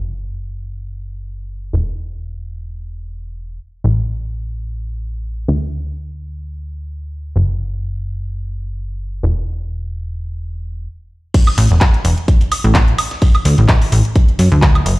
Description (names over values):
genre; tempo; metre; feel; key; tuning
piano house; 128 BPM; 4/4; swing 55% on 16ths; unclear; A4 = 442 Hz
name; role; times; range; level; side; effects
plucky analog bass; bass; 0.0-15.0 s; E1 to F#2; -17 LUFS; equal; sidechain pumping
dusty soul sampler-style drum kit; drums; 11.3-15.0 s; hi-hat, snare drum; -29 LUFS; equal; sidechain pumping on hats, high-pass filter on hats, high-pass filter on snare, high-pass filter on room
electronic kick drum; drums; 11.3-14.7 s; none; -12 LUFS; equal; none
house drum kit; drums; 11.3-15.0 s; crash cymbal, handclaps, hi-hat, woodblock; -20 LUFS; equal; none
room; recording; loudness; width
little or no reverb; played on a big sound system in a bare room, stone room reverb; -14 LUFS; side -21 dB against mid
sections
0.0-11.3 A section; 11.3-15.0 B section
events
stop 10.9-11.3; drop 11.3-15.0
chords
none